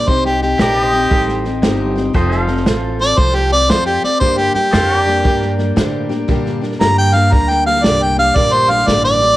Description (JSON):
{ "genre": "honky-tonk and classic country", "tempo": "116 BPM", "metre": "4/4", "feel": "swing 65% on 8ths", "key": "G minor", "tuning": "A4 = 441 Hz", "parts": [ { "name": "clear harmonica", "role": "melody", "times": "0.0-9.4 s", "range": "G4 to Bb5", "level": "-14 LUFS", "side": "equal", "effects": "cassette tape" }, { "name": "picked steel-string acoustic guitar", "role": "accompaniment", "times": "0.0-9.4 s", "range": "G2 to A4", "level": "-21 LUFS", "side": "left 6 dB", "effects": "none" }, { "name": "pedal steel guitar", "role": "sustained chords", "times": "0.0-9.4 s", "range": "G4 to G5", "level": "-24 LUFS", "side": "right 1 dB", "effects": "none" }, { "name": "upright bass", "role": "bass", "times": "0.0-9.4 s", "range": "F1 to Bb2", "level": "-19 LUFS", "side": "equal", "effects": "none" }, { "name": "warm grand piano", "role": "accompaniment", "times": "0.1-9.3 s", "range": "D4 to D5", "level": "-25 LUFS", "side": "right 8 dB", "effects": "none" }, { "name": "natural country drum kit", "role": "drums", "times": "0.1-9.3 s", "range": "hi-hat, kick drum, snare drum", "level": "-19 LUFS", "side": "equal", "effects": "cassette tape" } ], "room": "moderate spring reverb, RT60 1.7 s", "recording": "home recording on cassette", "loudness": "-12 LUFS", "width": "side -16 dB against mid", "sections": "0.0-9.4 A section", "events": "harmonica solo 0.0-9.4", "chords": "0.1 Cm; 2.1 F; 4.2 Gm" }